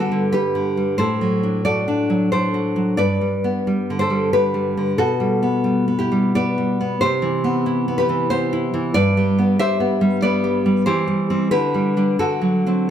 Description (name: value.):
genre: romantic piece for solo classical guitar.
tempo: 91 BPM.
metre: 3/4.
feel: rubato.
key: G major.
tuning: A4 = 440 Hz.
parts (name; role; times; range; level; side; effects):
nylon-string guitar; solo; 0.0-12.9 s; G2 to E5; -17 LUFS; equal; none.
room: wet recital hall reverb, RT60 1.5 s.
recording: none.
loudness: -17 LUFS.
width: side -9 dB against mid.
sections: 0.0-12.9 A section.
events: none.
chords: 0.0 G; 1.0 D7/A; 3.0 G; 5.0 G/B; 7.0 Cmaj7; 8.9 G; 10.9 C/E; 11.5 G/D; 12.2 D7.